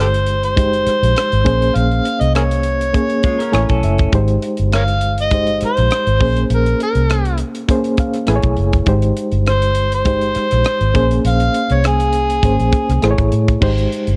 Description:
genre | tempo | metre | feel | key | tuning
lush 1970s-style soul | 101 BPM | 4/4 | swing 54% on 16ths | Ab major | A4 = 439 Hz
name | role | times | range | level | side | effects
overdriven harmonica | melody | 0.0-13.3 s | G4 to F5 | -20 LUFS | equal | none
reed electric piano | accompaniment | 0.0-14.2 s | Ab3 to G#5 | -22 LUFS | equal | fast tremolo
vintage muted fingered electric bass | bass | 0.0-14.2 s | Gb1 to A2 | -19 LUFS | equal | none
tight funk drum kit | drums | 0.1-14.2 s | crash cymbal, hi-hat, kick drum, rim click | -22 LUFS | equal | none
electric guitar through a small old amp | riff | 3.2-4.1 s | Ab3 to Bb4 | -28 LUFS | equal | none
room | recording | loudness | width
light reverb, studio reverb | cassette tape | -16 LUFS | mono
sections
0.0-13.6 A section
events
reed electric piano fill 3.2-4.1, 7.7-8.9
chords
0.0 Abmaj7; 1.5 Bbm9; 3.5 Amaj7; 4.1 Abmaj7; 6.2 Bbm9; 8.3 Amaj7; 8.9 Abmaj7; 10.9 Bbm9; 13.0 Amaj7; 13.6 Abmaj7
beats
0.57 1.17 | 1.76 2.35 2.94 3.54 | 4.13 4.72 5.32 5.91 | 6.50 7.09 7.69 8.28 | 8.87 9.47 10.06 10.65 | 11.25 11.84 12.43 13.03 | 13.62

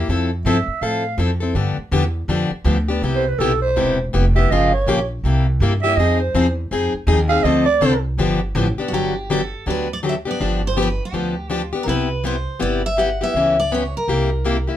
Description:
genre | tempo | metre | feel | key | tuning
acoustic string swing (jazz manouche) | 163 BPM | 4/4 | swing 62% on 8ths | G major from 8.9 s | A4 = 440 Hz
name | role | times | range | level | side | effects
picked plugged-in steel-string acoustic guitar | accompaniment | 0.0-14.8 s | C3 to A4 | -20 LUFS | left 3 dB | none
upright bass | bass | 0.0-14.7 s | E1 to A2 | -21 LUFS | equal | none
growling clarinet | second line | 0.5-8.0 s | A4 to F5 | -20 LUFS | right 4 dB | none
picked steel-string acoustic guitar | melody | 8.9-14.6 s | F#4 to F#5 | -23 LUFS | equal | none
room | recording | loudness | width
moderate studio ambience, RT60 0.5 s | band playing live in one room | -17 LUFS | side -11 dB against mid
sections
0.0-8.9 A section; 8.9-14.8 B section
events
clarinet solo 0.0-8.9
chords
0.1 Fmaj7; 1.6 G7; 3.0 Cmaj7; 4.5 Gm7b5; 5.2 C7; 6.0 Fm7; 7.4 Dm7; 8.2 G7; 8.9 Gmaj9; 10.4 G7; 11.9 Cmaj7; 13.3 C#m7b5; 14.1 C7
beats
| 0.07 0.45 0.81 1.18 | 1.55 1.92 2.29 2.66 | 3.03 3.40 3.76 4.13 | 4.50 4.87 5.24 5.61 | 5.97 6.34 6.71 7.08 | 7.45 7.81 8.18 8.55 | 8.92 9.29 9.65 10.02 | 10.39 10.76 11.13 11.50 | 11.87 12.23 12.60 12.97 | 13.34 13.71 14.08 14.45

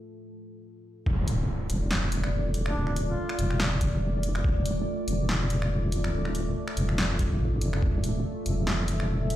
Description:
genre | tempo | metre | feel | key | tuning
deep dubstep | 142 BPM | 4/4 | swing 56% on 16ths, half-time | D minor | A4 = 440 Hz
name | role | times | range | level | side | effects
deep dark ambient pad | sustained chords | 0.0-9.4 s | A3 to E5 | -34 LUFS | equal | chorus, built-in reverb
deep soft wobble bass | bass | 1.1-9.4 s | D1 to A1 | -27 LUFS | equal | chorus
electronic kick drum | drums | 1.1-1.2, 3.8-4.5, 7.2-7.9 s | none | -28 LUFS | equal | none
impact | sound effects | 1.1-2.8 s | none | -34 LUFS | equal | none
deep house drum kit | drums | 1.3-9.4 s | finger snaps, hi-hat, snare drum | -33 LUFS | equal | none
warm duduk | melody | 2.7-3.7 s | D4 to F4 | -36 LUFS | left 1 dB | dub echo
room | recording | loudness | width
light reverb | played on a big sound system in a bare room, stone room reverb | -25 LUFS | side -13 dB against mid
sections
0.0-1.1 A section; 1.1-9.4 B section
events
drop 1.1-9.4; impact 1.1-2.8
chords
0.0 Dm (rootless); 1.1 Dm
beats
0.22 0.64 | 1.06 1.49 1.91 2.33 | 2.75 3.18 3.60 4.02 | 4.45 4.87 5.29 5.71 | 6.13 6.56 6.98 7.40 | 7.83 8.25 8.67 9.09

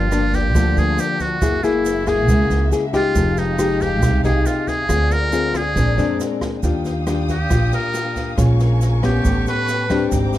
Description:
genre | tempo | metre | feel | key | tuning
bossa nova | 138 BPM | 4/4 | straight | unclear | A4 = 441 Hz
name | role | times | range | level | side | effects
trumpet with metal mute | melody | 0.0-10.1 s | Eb4 to B4 | -23 LUFS | right 2 dB | none
nylon-string guitar | accompaniment | 0.0-10.4 s | G2 to G#4 | -21 LUFS | left 4 dB | none
warm symphonic string section | sustained chords | 0.0-10.4 s | G#3 to Eb6 | -29 LUFS | left 2 dB | none
upright bass | bass | 0.0-10.4 s | F1 to F2 | -19 LUFS | right 1 dB | none
open jazz drum kit | drums | 0.1-10.4 s | kick drum, rim click, snare drum | -25 LUFS | right 1 dB | none
egg shaker | percussion | 0.1-10.4 s | none | -38 LUFS | right 10 dB | none
room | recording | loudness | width
little or no reverb | dark, warm production | -16 LUFS | side -14 dB against mid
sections
0.0-6.6 A section; 6.6-10.4 B section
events
muted trumpet solo 6.6-10.4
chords
0.0 Gm7; 1.4 F#9; 3.2 Fm9; 4.9 Dm7b5; 5.8 Bb9; 6.6 Ebmaj9; 8.4 Bbm7; 9.2 A9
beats
0.11 0.54 0.98 | 1.41 1.85 2.28 2.72 | 3.15 3.59 4.02 4.46 | 4.89 5.33 5.76 6.20 | 6.63 7.07 7.51 7.94 | 8.38 8.81 9.25 9.68 | 10.12

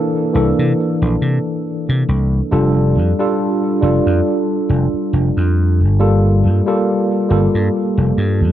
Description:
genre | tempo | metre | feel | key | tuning
vaporwave | 69 BPM | 4/4 | swing 55% on 16ths | F major | A4 = 440 Hz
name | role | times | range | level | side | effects
tine electric piano | accompaniment | 0.0-8.5 s | E3 to A4 | -16 LUFS | equal | medium stereo tremolo, lush chorus, tape echo
vintage slap bass | bass | 0.3-8.5 s | F1 to C3 | -14 LUFS | equal | none
room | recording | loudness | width
light reverb, digital ambience | cassette tape, nothing above 10.8 kHz | -13 LUFS | side -12 dB against mid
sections
0.0-8.5 A section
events
none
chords
0.0 C13; 2.5 F69; 6.0 Gm9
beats
0.78 1.65 | 2.52 3.39 4.26 5.13 | 6.00 6.87 7.74

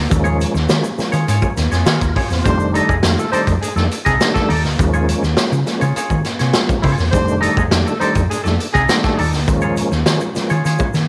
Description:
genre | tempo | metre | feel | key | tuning
funk | 102 BPM | 4/4 | straight | unclear | A4 = 440 Hz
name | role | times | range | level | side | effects
tonewheel organ | stabs | 0.0-11.0 s | Eb3 to Bb4 | -24 LUFS | equal | chorus vibrato, fast rotary speaker
hollow-body short-scale fingered electric bass | bass | 0.0-11.1 s | F1 to Eb3 | -20 LUFS | equal | none
twangy electric guitar | accompaniment | 0.1-11.0 s | Eb4 to Eb5 | -25 LUFS | equal | none
crunchy breakbeat drum kit | drums | 0.1-11.1 s | hi-hat, kick drum, snare drum | -21 LUFS | equal | none
egg shaker | percussion | 0.1-11.1 s | none | -42 LUFS | equal | none
mellow horn section | second line | 2.4-9.3 s | Ab3 to C5 | -26 LUFS | equal | none
room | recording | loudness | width
light reverb | none | -16 LUFS | mono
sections
0.0-11.1 A section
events
none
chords
0.1 Eb9sus4; 2.4 F13; 4.8 Eb9sus4; 7.1 F13; 9.5 Eb9sus4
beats
| 0.11 0.69 1.28 1.86 | 2.45 3.03 3.62 4.21 | 4.79 5.38 5.96 6.55 | 7.13 7.72 8.31 8.89 | 9.48 10.07 10.65

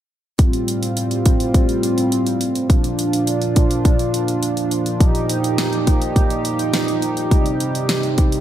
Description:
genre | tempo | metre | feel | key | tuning
synth-pop | 104 BPM | 4/4 | straight | F mixolydian | A4 = 439 Hz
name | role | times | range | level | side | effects
chorused pulse-width pad | sustained chords | 0.4-8.4 s | A2 to G4 | -19 LUFS | right 1 dB | none
pop drum kit | drums | 0.4-8.4 s | hi-hat, kick drum, snare drum | -17 LUFS | equal | none
room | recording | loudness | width
light reverb, digital ambience | none | -16 LUFS | side -11 dB against mid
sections
0.4-8.4 A section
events
none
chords
0.4 Fadd9; 2.7 Bb; 5.0 Ebadd9; 7.3 Cm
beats
| 0.39 0.97 1.54 2.12 | 2.70 3.27 3.85 4.43 | 5.01 5.58 6.16 6.74 | 7.31 7.89

